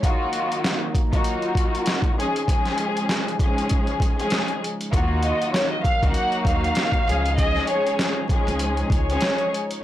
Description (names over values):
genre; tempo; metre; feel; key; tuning
hip hop, boom-bap hip-hop; 98 BPM; 4/4; swing 55% on 16ths; unclear; A4 = 440 Hz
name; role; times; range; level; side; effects
warm studio string section; accompaniment; 0.0-9.5 s; F3 to Ab4; -25 LUFS; left 2 dB; cassette tape, high-pass filter, low-pass filter
warm analog pad; sustained chords; 0.0-9.8 s; Db3 to Eb4; -32 LUFS; right 1 dB; chorus, high-pass filter, low-pass filter
boom bap sampler-style drum kit; drums; 0.0-9.8 s; hi-hat, kick drum, snare drum; -23 LUFS; equal; none
upright bass; bass; 4.9-9.1 s; Db2 to Eb2; -25 LUFS; equal; tube saturation
warm symphonic violin section; melody; 5.2-9.8 s; Db5 to Gb5; -25 LUFS; equal; high-pass filter, low-pass filter, ping-pong delay
room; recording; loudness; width
light reverb; blown-out, overdriven recording, vinyl crackle, overdrive; -20 LUFS; side -13 dB against mid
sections
0.0-9.8 A section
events
break 0.0-4.9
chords
0.0 Ebmadd9; 2.2 Db; 4.9 Ebmadd9; 7.1 Db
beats
| 0.03 0.65 1.26 1.87 | 2.48 3.10 3.71 4.32 | 4.93 5.54 6.16 6.77 | 7.38 7.99 8.61 9.22 | 9.83